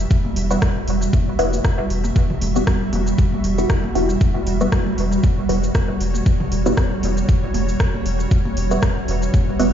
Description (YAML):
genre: dub techno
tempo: 117 BPM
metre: 4/4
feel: swing 56% on 16ths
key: E dorian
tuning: A4 = 440 Hz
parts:
  - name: granular cloud pad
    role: sustained chords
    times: 0.0-9.7 s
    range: G3 to E5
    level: -24 LUFS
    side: right 1 dB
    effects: built-in reverb, sidechain pumping
  - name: warm sub bass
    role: bass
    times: 0.0-9.7 s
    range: E1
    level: -22 LUFS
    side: equal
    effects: sidechain pumping
  - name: electronic kick drum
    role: drums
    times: 0.1-9.5 s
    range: none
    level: -18 LUFS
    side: equal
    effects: overdrive, small room ambience
  - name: soft vintage rhythm box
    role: drums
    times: 0.1-9.7 s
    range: hi-hat, rim click, shaker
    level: -30 LUFS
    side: equal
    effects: small room ambience, dub echo
  - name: electronic congas and toms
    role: percussion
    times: 0.2-9.5 s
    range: none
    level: -30 LUFS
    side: right 1 dB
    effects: overdrive, sidechain pumping on perc, small room ambience, sidechain pumping on toms, dub echo
  - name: filtered dub chord stab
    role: stabs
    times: 0.5-9.7 s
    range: G3 to F#4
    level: -23 LUFS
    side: equal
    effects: phaser, sidechain pumping, dub echo
room: light reverb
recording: played on a big sound system in a bare room, large studio reverb, nothing above 7.5 kHz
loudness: -16 LUFS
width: side -9 dB against mid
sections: 0.0-9.7 A section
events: none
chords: 0.0 Emadd9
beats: | 0.11 0.62 1.13 1.65 | 2.16 2.67 3.18 3.70 | 4.21 4.72 5.24 5.75 | 6.26 6.77 7.29 7.80 | 8.31 8.82 9.34